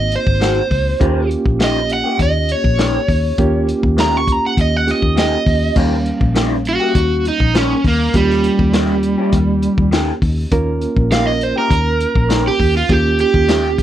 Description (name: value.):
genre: straight-eighth soul blues.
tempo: 101 BPM.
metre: 4/4.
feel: straight.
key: Eb mixolydian.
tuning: A4 = 440 Hz.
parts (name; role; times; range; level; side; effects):
overdriven semi-hollow guitar; melody; 0.0-13.8 s; G3 to Db6; -17 LUFS; right 2 dB; none.
barky reed electric piano; accompaniment; 0.0-13.8 s; G3 to F5; -21 LUFS; right 3 dB; overdrive, fast tremolo.
vintage muted fingered electric bass; bass; 0.0-13.8 s; Ab1 to Eb2; -18 LUFS; left 1 dB; none.
crunchy breakbeat drum kit; drums; 0.1-13.8 s; crash cymbal, hi-hat, kick drum, snare drum; -19 LUFS; left 1 dB; none.
electric guitar through a small old amp; stabs; 0.4-13.7 s; Eb3 to G4; -21 LUFS; left 4 dB; phaser.
room: little or no reverb.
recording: dry, close 1970s-style studio recording.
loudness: -13 LUFS.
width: side -12 dB against mid.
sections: 0.0-5.8 A section; 5.8-13.8 B section.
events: overdriven electric guitar solo 5.8-13.8.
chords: 0.0 Ab7; 1.0 Eb7.